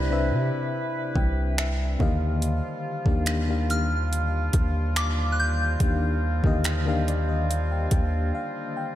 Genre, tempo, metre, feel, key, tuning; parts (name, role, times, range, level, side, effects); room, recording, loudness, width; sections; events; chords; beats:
contemporary R&B; 71 BPM; 4/4; straight; A4 = 440 Hz
FM electric piano with tremolo; accompaniment; 0.0-9.0 s; C3 to G5; -29 LUFS; left 3 dB
clear woodwind section; sustained chords; 0.0-9.0 s; C3 to B4; -33 LUFS; right 3 dB
long sustained 808-style bass; bass; 0.0-8.3 s; C2 to C3; -25 LUFS; equal
smooth R&B drum kit; drums; 1.2-8.1 s; finger snaps, hi-hat, kick drum; -27 LUFS; equal; overdrive
soft synth bell; melody; 3.7-8.7 s; D6 to G6; -30 LUFS; equal; chorus, tremolo, analog delay
moderate lush hall reverb, RT60 2.8 s; dreamy mix soaked in reverb; -22 LUFS; side -13 dB against mid
0.0-9.0 A section
FM electric piano fill 0.7-2.4, 6.6-9.0; break 8.3-9.0
0.0 Cmaj9; 2.0 Ebmaj9
0.73 1.58 | 2.42 3.27 4.11 4.96 | 5.80 6.65 7.49 8.34